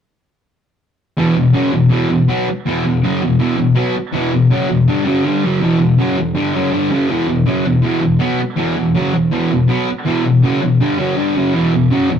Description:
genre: rock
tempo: 162 BPM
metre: 4/4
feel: straight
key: E minor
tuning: A4 = 441 Hz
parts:
  - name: fuzz guitar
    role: solo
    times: 1.2-12.2 s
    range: E2 to B3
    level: -13 LUFS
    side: equal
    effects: distortion
room: wet studio reverb, RT60 0.6 s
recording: rough rehearsal-room recording, tube saturation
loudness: -13 LUFS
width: side -8 dB against mid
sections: 1.2-7.1 A section; 7.1-12.2 B section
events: none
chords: 1.2 Em

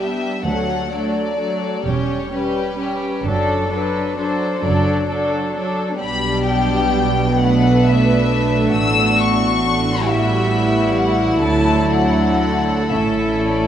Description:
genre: classical, slow romantic movement for string orchestra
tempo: 43 BPM (dotted quarters)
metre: 6/8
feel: rubato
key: unclear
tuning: A4 = 438 Hz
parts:
  - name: warm studio violin section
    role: melody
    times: 0.0-13.7 s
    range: A4 to E6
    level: -22 LUFS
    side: left 6 dB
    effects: none
  - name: rich studio violin section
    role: second line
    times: 0.0-13.7 s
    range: D4 to B4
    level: -21 LUFS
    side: left 1 dB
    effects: none
  - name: warm studio viola section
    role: accompaniment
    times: 0.0-13.7 s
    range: F#3 to D4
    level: -20 LUFS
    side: right 1 dB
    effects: none
  - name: dark studio double bass section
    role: bass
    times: 0.0-13.7 s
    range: E1 to D2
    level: -23 LUFS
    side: right 3 dB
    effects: none
  - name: warm studio cello section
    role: bass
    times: 0.0-13.7 s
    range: D2 to D3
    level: -25 LUFS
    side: right 3 dB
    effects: none
room: moderate concert hall reverb, RT60 2.2 s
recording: nothing above 10.9 kHz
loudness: -15 LUFS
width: side -10 dB against mid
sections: 0.0-13.7 A section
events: none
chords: 0.5 D; 1.9 C#dim/E; 3.3 D/F#; 6.0 G/B; 7.4 E5/B; 8.7 A13; 11.4 D; 12.9 A

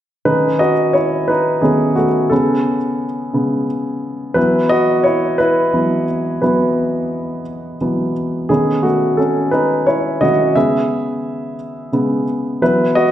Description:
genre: pop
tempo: 58 BPM (dotted quarters)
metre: 6/8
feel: straight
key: E major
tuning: A4 = 440 Hz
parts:
  - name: warm grand piano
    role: accompaniment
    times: 0.3-13.1 s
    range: C#3 to E5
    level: -14 LUFS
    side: equal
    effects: none
room: wet recital hall reverb, RT60 1.4 s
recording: nothing above 10.7 kHz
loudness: -14 LUFS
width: side -11 dB against mid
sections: 0.3-13.1 A section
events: grand piano solo 0.3-13.1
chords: 0.3 B7; 2.3 Amaj7; 4.4 Esus2; 8.5 B7; 10.6 C#m7; 12.6 Esus2

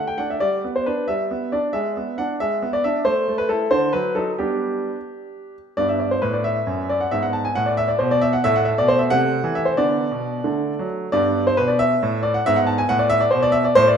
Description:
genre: classical-period piano sonatina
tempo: 90 BPM (dotted quarters)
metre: 6/8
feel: rubato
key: G major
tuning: A4 = 440 Hz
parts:
  - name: bright grand piano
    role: solo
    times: 0.0-14.0 s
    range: F#2 to A5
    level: -18 LUFS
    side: equal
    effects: none
room: wet recital hall reverb, RT60 1.7 s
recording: minimal, uncompressed stereo recording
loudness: -18 LUFS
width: side -7 dB against mid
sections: 0.0-5.8 A section; 5.8-14.0 B section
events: none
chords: 0.4 G; 1.8 E7/G#; 3.1 Am; 3.7 D; 4.4 G; 7.1 Abm7b13; 8.4 Am69; 9.1 Am/C; 9.8 Bm; 10.5 D; 11.1 G; 12.5 G#m7b5

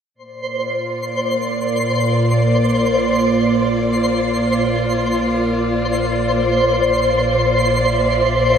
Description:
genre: ambient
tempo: free time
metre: none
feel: none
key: Bb major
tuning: A4 = 439 Hz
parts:
  - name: bowed-like drone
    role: drone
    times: 0.6-8.6 s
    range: Bb2 to D5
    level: -18 LUFS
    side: right 1 dB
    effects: built-in reverb, phaser
  - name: rich chamber string section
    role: sustained chords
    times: 0.2-8.6 s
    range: Bb3 to E5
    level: -23 LUFS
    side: equal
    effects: shimmer reverb
  - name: deep rumbling drone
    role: bass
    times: 2.6-8.6 s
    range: Bb1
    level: -30 LUFS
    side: left 1 dB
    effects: built-in reverb
  - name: twinkling granular texture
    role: texture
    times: 0.4-8.6 s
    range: C5 to C6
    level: -19 LUFS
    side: left 1 dB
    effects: built-in reverb, shimmer reverb
room: wet plate reverb, RT60 3.5 s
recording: dreamy mix soaked in reverb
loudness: -15 LUFS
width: side -8 dB against mid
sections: 0.2-8.6 A section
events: fade-in on string section 0.2-8.6; fade-in on synth drone 0.2-8.6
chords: 0.2 Bb

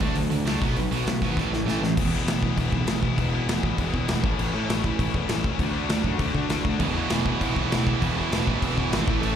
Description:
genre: punk rock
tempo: 199 BPM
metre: 4/4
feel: straight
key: E major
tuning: A4 = 438 Hz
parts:
  - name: overdriven electric guitar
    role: riff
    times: 0.0-9.4 s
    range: E2 to D4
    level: -31 LUFS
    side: right 1 dB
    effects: slapback echo
  - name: tight distorted guitar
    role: riff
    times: 0.0-9.4 s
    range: A2 to F#4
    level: -30 LUFS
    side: left 12 dB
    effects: distortion
  - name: tight distorted guitar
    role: riff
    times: 0.0-2.0, 6.8-9.4 s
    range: E2 to D4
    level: -28 LUFS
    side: right 11 dB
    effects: distortion
  - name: fuzz picked electric bass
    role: bass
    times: 0.0-9.3 s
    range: E1 to D3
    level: -28 LUFS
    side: equal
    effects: overdrive
  - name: big rock drum kit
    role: drums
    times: 0.0-9.3 s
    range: crash cymbal, hi-hat, kick drum, snare drum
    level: -27 LUFS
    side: equal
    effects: none
room: small room ambience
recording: live gig heard through the venue's PA, club reverb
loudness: -22 LUFS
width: side -9 dB against mid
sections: 0.0-2.0 A section; 2.0-9.4 B section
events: drum fill 1.4-2.0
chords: 0.0 D; 0.6 B5; 1.4 A5; 2.0 E; 4.2 A; 5.6 D; 6.8 E

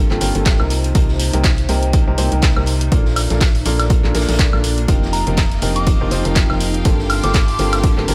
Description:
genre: piano house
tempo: 122 BPM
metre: 4/4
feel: swing 56% on 16ths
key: Bb major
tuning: A4 = 439 Hz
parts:
  - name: clear upright piano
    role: riff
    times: 0.0-8.1 s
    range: G2 to C5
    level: -24 LUFS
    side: equal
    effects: vintage 12-bit sampler grit, sidechain pumping
  - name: organ-like FM bass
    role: bass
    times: 0.0-8.1 s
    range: F1 to C2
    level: -22 LUFS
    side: equal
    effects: tube saturation, sidechain pumping
  - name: granular cloud pad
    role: texture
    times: 0.2-8.1 s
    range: Bb3 to Bb5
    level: -32 LUFS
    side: equal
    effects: none
  - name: punchy analog drum machine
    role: drums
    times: 0.1-8.1 s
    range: handclaps, hi-hat, woodblock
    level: -25 LUFS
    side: equal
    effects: none
  - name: raw garage drum kit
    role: drums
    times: 0.2-8.1 s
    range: hi-hat, snare drum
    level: -34 LUFS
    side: equal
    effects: sidechain pumping on hats, high-pass filter on hats, high-pass filter on snare, high-pass filter on room
  - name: electronic kick drum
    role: drums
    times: 0.5-7.9 s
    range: none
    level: -18 LUFS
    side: equal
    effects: none
  - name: clear studio violin section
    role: sustained chords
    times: 4.9-8.1 s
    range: G4 to C6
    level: -32 LUFS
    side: equal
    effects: sidechain pumping
  - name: soft synth bell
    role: melody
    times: 5.1-7.7 s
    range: Bb5 to F6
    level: -27 LUFS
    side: equal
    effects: chorus, phaser, tape echo
room: studio reverb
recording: none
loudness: -16 LUFS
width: mono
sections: 0.0-8.1 A section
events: none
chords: 0.0 Gm11; 0.7 Cm7; 2.9 Bbmaj7; 4.9 F9sus4; 6.9 Gm11

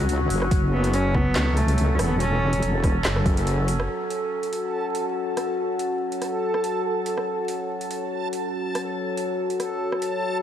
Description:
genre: deep dubstep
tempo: 142 BPM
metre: 4/4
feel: swing 54% on 16ths, half-time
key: F# minor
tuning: A4 = 440 Hz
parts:
  - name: overtone-sweeping drone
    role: sustained chords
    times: 0.0-10.4 s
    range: F#3 to A4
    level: -27 LUFS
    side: left 2 dB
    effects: chorus, built-in reverb
  - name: wobble bass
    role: bass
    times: 0.0-3.9 s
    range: E1 to C#2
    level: -22 LUFS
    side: equal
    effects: chorus
  - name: garage drum kit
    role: drums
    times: 0.1-10.1 s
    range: handclaps, hi-hat, rim click, snare drum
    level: -31 LUFS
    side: right 1 dB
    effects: overdrive, studio reverb
  - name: electronic kick drum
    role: drums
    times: 0.5-3.3 s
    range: none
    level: -22 LUFS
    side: equal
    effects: overdrive, studio reverb
  - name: rich cello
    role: melody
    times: 0.7-2.8 s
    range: A3 to C#4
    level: -29 LUFS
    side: equal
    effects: dub echo
  - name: backwards swelling texture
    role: texture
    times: 3.9-10.4 s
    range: A4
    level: -29 LUFS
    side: right 2 dB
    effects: built-in reverb
room: light reverb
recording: vinyl crackle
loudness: -22 LUFS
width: side -10 dB against mid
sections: 0.0-3.9 A section; 3.9-10.4 B section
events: drop 0.0-3.9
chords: 0.0 F#m

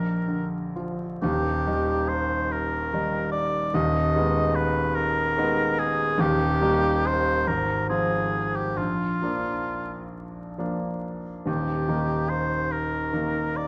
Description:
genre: classical, romantic duo for oboe and grand piano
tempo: 41-49 BPM (dotted quarters)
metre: 6/8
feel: rubato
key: Eb major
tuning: A4 = 440 Hz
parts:
  - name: warm oboe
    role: melody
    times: 0.0-13.7 s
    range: F4 to Eb5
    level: -28 LUFS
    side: equal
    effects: none
  - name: clear grand piano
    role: accompaniment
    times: 0.0-13.7 s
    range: Eb1 to G5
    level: -28 LUFS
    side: equal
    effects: none
room: wet recital hall reverb, RT60 1.4 s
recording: dark, warm production, vinyl crackle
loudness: -25 LUFS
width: mono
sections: 0.0-1.2 A section; 1.2-13.7 B section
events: none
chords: 0.0 Bb; 1.2 Eb; 3.7 Abm/Eb; 6.2 Eb; 7.5 Fm/Ab; 8.8 Bb; 11.5 Eb

